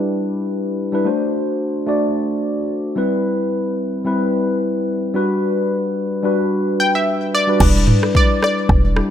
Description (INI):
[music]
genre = afrobeats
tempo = 110 BPM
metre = 4/4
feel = swing 55% on 16ths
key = G major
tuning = A4 = 440 Hz
[part]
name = mellow tine electric piano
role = accompaniment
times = 0.0-9.1 s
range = G3 to D5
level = -18 LUFS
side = left 1 dB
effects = wide subtle chorus
[part]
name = analog pluck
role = melody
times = 6.8-9.1 s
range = D5 to G5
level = -19 LUFS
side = left 1 dB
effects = chorus
[part]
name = woody log drum bass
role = bass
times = 7.6-9.0 s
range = E1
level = -16 LUFS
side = equal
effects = none
[part]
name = afro-pop drum kit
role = drums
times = 7.6-9.1 s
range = crash cymbal, kick drum, rim click, toms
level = -16 LUFS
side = equal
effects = none
[sound]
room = light reverb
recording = none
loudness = -16 LUFS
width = side -10 dB against mid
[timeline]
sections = 0.0-7.6 A section; 7.6-9.1 B section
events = hi-hats muted 7.6-9.1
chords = 0.0 Em7; 1.1 D7; 3.0 Cmaj7; 5.1 Gmaj7; 7.6 Em7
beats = 0.51 | 1.06 1.60 2.15 2.69 | 3.24 3.79 4.33 4.88 | 5.42 5.97 6.51 7.06 | 7.60 8.15 8.69